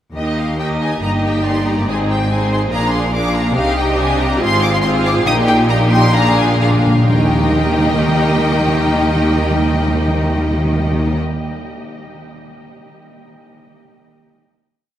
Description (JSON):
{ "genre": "quick classical-period movement for symphony orchestra", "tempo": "125-143 BPM", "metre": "4/4", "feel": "rubato", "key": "Eb major", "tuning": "A4 = 440 Hz", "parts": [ { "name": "clear studio double bass section", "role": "bass", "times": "0.1-11.2 s", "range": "G1 to Eb2", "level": "-20 LUFS", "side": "equal", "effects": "none" }, { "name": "rich studio violin section", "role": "melody", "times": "0.2-11.2 s", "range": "Eb5 to Eb6", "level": "-22 LUFS", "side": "left 2 dB", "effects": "none" }, { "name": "rich studio violin section", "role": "second line", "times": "0.2-11.2 s", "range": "G4 to G5", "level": "-21 LUFS", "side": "equal", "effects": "none" }, { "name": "rich studio viola section", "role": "accompaniment", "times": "0.2-11.2 s", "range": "Bb3 to G4", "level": "-19 LUFS", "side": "right 1 dB", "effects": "none" }, { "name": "rich studio cello section", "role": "bass", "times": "0.2-11.2 s", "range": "Eb2 to Eb3", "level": "-20 LUFS", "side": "left 1 dB", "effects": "none" }, { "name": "timpani", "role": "percussion", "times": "5.3-11.2 s", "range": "Bb2 to Eb3", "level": "-20 LUFS", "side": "right 1 dB", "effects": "none" } ], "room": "wet huge ambient reverb, RT60 7.7 s", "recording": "in a vast, echoing space", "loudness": "-13 LUFS", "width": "side -11 dB against mid", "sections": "0.1-7.1 A section; 7.1-10.8 final chord", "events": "slowing down 2.7-7.1; timpani fill 6.1-7.1", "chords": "0.1 Eb; 1.0 Eb/G; 1.9 Ab; 2.7 Bb7; 3.6 Cm; 4.4 Fm/Ab; 5.3 Eb/Bb; 6.1 Bb7; 7.1 Eb" }